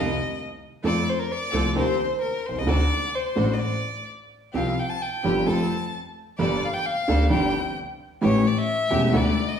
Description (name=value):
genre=tango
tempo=131 BPM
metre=4/4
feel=rubato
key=unclear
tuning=A4 = 436 Hz
part: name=clear violin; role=second line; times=0.0-9.6 s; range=Bb4 to A5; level=-27 LUFS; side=left 2 dB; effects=none
part: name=dark upright piano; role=accompaniment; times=0.0-9.3 s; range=E1 to A4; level=-24 LUFS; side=equal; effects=none
part: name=clear symphonic string section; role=stabs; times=0.0-9.3 s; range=A3 to Bb4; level=-33 LUFS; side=equal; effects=none
part: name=upright bass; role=bass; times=0.0-9.3 s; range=E1 to F2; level=-28 LUFS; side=equal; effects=none
room=wet large studio reverb, RT60 1.3 s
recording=band playing live in one room, small room ambience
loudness=-21 LUFS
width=side -8 dB against mid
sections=0.0-9.6 A section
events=violin solo 0.0-9.6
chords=0.0 Cm7; 0.8 F; 1.8 Cm7/Eb; 2.7 D; 4.5 Csus4; 5.5 F; 6.4 Gmadd9; 7.3 Csus2/G; 8.2 A7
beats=0.39 | 0.84 1.29 1.75 2.21 | 2.67 3.13 3.60 4.07 | 4.54 5.00 5.47 5.93 | 6.39 6.85 7.31 7.76 | 8.22 8.68 9.14